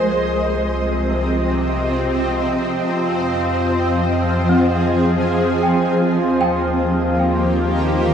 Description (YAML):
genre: ambient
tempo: 57 BPM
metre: 3/4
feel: straight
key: F minor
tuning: A4 = 440 Hz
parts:
  - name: shimmering ambient pad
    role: sustained chords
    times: 0.0-8.1 s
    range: C3 to Eb5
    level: -18 LUFS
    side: equal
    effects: chorus, built-in reverb, cassette tape, shimmer reverb
  - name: worn celesta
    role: arpeggios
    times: 0.0-8.1 s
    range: C4 to G5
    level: -25 LUFS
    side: equal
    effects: cassette tape, tape echo, shimmer reverb
  - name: round analog bass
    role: bass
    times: 0.0-8.1 s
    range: C2 to F2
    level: -25 LUFS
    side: equal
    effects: none
  - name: analog drone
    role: drone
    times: 0.0-8.1 s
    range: F3 to F4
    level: -22 LUFS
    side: equal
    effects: chorus, cassette tape
room: wet studio reverb, RT60 0.6 s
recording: home recording on cassette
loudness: -16 LUFS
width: side -8 dB against mid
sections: 0.0-8.1 A section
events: fade-in on synth drone 0.0-8.1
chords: 0.0 Cm; 2.9 Fm7; 6.0 Eb